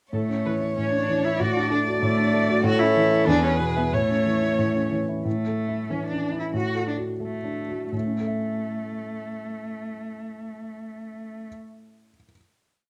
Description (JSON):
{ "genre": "quick classical-period movement for piano quartet", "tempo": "80-97 BPM", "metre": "2/4", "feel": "rubato", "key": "A major", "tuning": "A4 = 440 Hz", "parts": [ { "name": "dark violin", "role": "melody", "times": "0.1-5.0 s", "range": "G#4 to D5", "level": "-29 LUFS", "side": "equal", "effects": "none" }, { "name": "warm cello", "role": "second line", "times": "0.1-11.5 s", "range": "A3 to F#4", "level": "-30 LUFS", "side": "equal", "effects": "none" }, { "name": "rich viola", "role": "accompaniment", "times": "0.1-4.9 s", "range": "A4 to D5", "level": "-31 LUFS", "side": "equal", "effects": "none" }, { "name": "warm grand piano", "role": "accompaniment", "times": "0.1-12.4 s", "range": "E2 to E5", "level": "-28 LUFS", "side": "equal", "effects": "none" } ], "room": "moderate recital hall reverb, RT60 1.2 s", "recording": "close, detailed microphones", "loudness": "-24 LUFS", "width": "mono", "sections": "0.1-5.3 A section; 5.3-7.9 coda; 7.9-10.7 final chord", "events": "slowing down 4.6-7.9", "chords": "0.1 A; 1.4 D/A; 2.6 A; 3.3 E; 3.9 A; 6.5 D/A; 7.9 A", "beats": "| 0.13 0.77 | 1.40 2.02 | 2.65 3.28 | 3.94 4.60 | 5.26 5.90 | 6.54 7.21 | 7.94 8.64 | 9.34 10.04" }